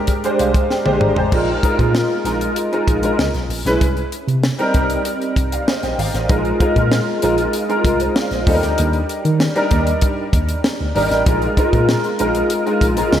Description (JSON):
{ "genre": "polished 1980s jazz-funk pop", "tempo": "97 BPM", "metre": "4/4", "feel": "straight", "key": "unclear", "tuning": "A4 = 441 Hz", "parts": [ { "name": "warm concert grand piano", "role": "accompaniment", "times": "0.0-13.1 s", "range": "G3 to Bb5", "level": "-17 LUFS", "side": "equal", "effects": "ensemble chorus, slapback echo" }, { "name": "tight funk drum kit", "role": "drums", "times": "0.1-13.2 s", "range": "crash cymbal, hi-hat, kick drum, snare drum, toms", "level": "-19 LUFS", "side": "equal", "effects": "none" }, { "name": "mellow tine electric piano", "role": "bass", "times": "0.4-13.2 s", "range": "Ab1 to Eb3", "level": "-21 LUFS", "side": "equal", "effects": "medium stereo tremolo" } ], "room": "moderate lush hall reverb, RT60 1.8 s, small room ambience", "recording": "big arena sound", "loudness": "-15 LUFS", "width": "side -10 dB against mid", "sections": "0.0-1.3 A section; 1.3-13.2 B section", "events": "grand piano fill 0.1-1.3; drum fill 0.7-1.3", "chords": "0.0 Bb13; 1.3 Bb7sus4; 3.2 Dbm7; 3.8 Cm7; 6.3 Bb7sus4; 8.5 Ebmaj7; 11.3 Bb7sus4" }